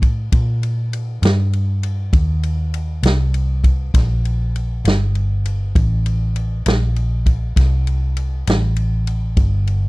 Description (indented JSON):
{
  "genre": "slow blues",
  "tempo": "66 BPM (dotted quarters)",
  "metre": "12/8",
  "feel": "straight",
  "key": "unclear",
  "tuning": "A4 = 438 Hz",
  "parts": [
    { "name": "vintage muted fingered electric bass", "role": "bass", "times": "0.0-9.9 s", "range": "G1 to Bb2", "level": "-17 LUFS", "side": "equal", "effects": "none" },
    { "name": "vintage drum kit", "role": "drums", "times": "0.0-9.8 s", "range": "kick drum, ride cymbal, snare drum", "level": "-17 LUFS", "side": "equal", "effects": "none" }
  ],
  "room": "little or no reverb",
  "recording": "dry, close 1970s-style studio recording",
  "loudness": "-16 LUFS",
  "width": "side -22 dB against mid",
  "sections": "0.0-9.9 A section",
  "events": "none",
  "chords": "none"
}